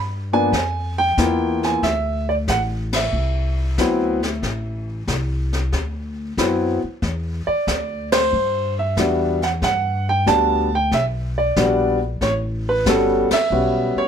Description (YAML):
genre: jazz piano trio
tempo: 92 BPM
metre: 4/4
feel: swing 69% on 8ths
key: D mixolydian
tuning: A4 = 440 Hz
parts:
  - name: upright bass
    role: bass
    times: 0.0-14.0 s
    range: G1 to G2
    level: -24 LUFS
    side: left 1 dB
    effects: none
  - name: clear upright piano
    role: melody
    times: 0.3-14.1 s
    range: E#3 to A5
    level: -18 LUFS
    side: equal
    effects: none
  - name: jazz brush drum kit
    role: drums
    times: 0.5-14.1 s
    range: brushed snare drum, hi-hat, kick drum, ride cymbal, snare drum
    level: -27 LUFS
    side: left 3 dB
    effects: none
room: light reverb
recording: none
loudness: -18 LUFS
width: side -8 dB against mid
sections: 0.0-14.1 A section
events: band accent 2.8-3.1, 8.0-8.3, 13.2-13.5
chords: 0.0 G#m6; 1.8 D7sus2; 7.0 Em7; 12.2 A13